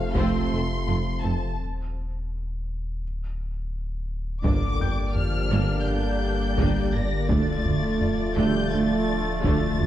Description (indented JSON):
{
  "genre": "cinematic, hybrid orchestral and electronic film score",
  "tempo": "84 BPM",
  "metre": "4/4",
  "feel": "straight",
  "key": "G minor",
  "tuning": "A4 = 440 Hz",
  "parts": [
    { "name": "warm symphonic violin section", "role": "melody", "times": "0.0-9.9 s", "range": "F5 to Bb6", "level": "-33 LUFS", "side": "left 4 dB", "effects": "none" },
    { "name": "dark French horn section", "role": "sustained chords", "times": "0.0-9.9 s", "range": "D3 to F4", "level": "-31 LUFS", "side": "left 2 dB", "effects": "none" },
    { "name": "warm analog pad", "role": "sustained chords", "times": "0.0-9.9 s", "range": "D3 to D5", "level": "-34 LUFS", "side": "equal", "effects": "chorus" },
    { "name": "warm trombone section", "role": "sustained chords", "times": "0.0-9.9 s", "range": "C3 to Bb3", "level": "-33 LUFS", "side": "right 4 dB", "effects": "none" },
    { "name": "sub bass with octave", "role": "bass", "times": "0.0-9.9 s", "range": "D1 to G1", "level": "-30 LUFS", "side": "left 1 dB", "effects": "none" },
    { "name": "dark baby grand piano", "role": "texture", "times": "0.0-7.3 s", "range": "G5 to A6", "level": "-45 LUFS", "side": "left 2 dB", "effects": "none" },
    { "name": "solo taiko drums", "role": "drums", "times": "0.1-9.9 s", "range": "none", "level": "-27 LUFS", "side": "left 1 dB", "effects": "none" },
    { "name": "warm symphonic violin section", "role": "second line", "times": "0.2-9.9 s", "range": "A3 to D5", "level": "-36 LUFS", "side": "left 1 dB", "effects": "none" },
    { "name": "dark symphonic viola section", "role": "accompaniment", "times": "0.2-9.9 s", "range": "F3 to D4", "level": "-31 LUFS", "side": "right 3 dB", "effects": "none" },
    { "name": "dark tuba", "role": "bass", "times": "0.2-9.9 s", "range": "F1 to D2", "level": "-31 LUFS", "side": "right 3 dB", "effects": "none" },
    { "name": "rich symphonic cello section", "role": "bass", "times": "0.2-9.9 s", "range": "D2 to G2", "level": "-32 LUFS", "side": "right 2 dB", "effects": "none" },
    { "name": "warm symphonic double bass section", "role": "bass", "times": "0.2-9.9 s", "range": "F1 to D2", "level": "-31 LUFS", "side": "right 2 dB", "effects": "none" }
  ],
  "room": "moderate scoring stage reverb, RT60 1.6 s",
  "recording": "dark, warm production",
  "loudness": "-23 LUFS",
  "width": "side -12 dB against mid",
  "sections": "0.0-4.4 A section; 4.4-9.9 B section",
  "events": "break 1.6-4.4; drum fill 3.4-4.4",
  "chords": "0.0 F; 1.6 N.C.; 4.4 Gm; 7.3 Dm",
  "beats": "0.16 0.87 | 1.59 2.30 3.02 3.73 | 4.45 5.16 5.87 6.59 | 7.30 8.02 8.73 9.45"
}